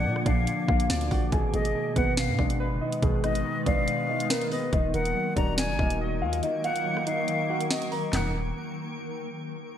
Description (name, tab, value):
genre	hip hop, drill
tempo	141 BPM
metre	4/4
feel	half-time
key	Eb harmonic minor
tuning	A4 = 444 Hz
part	dark concert grand piano	melody	0.0-8.3 s	Ab3 to Bb5	-31 LUFS	equal	wide subtle chorus, low-pass filter, digital delay
part	jazz flute	second line	0.0-8.3 s	Eb5 to Bb5	-32 LUFS	left 4 dB	digital delay
part	warbly lo-fi synth keys	accompaniment	0.0-8.3 s	Bb2 to Eb5	-32 LUFS	right 1 dB	chorus, phaser, low-pass filter
part	granular cloud pad	sustained chords	0.0-8.3 s	Bb2 to Bb4	-34 LUFS	equal	built-in reverb
part	distorted 808-style bass	bass	0.0-8.5 s	Eb1 to Bb2	-30 LUFS	equal	distortion
part	drill drum kit	drums	0.2-8.2 s	handclaps, hi-hat, kick drum, rim click, snare drum, toms	-28 LUFS	equal	vintage 12-bit sampler grit, gated reverb
room	moderate lush hall reverb, RT60 2.0 s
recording	bright 1980s-style digital production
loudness	-24 LUFS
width	side -10 dB against mid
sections	0.0-4.7 A section; 4.7-8.1 B section; 8.1-9.8 C section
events	kick muted 3.9-4.7, 6.4-8.1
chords	0.0 Bb; 1.3 Abm; 4.7 Ebm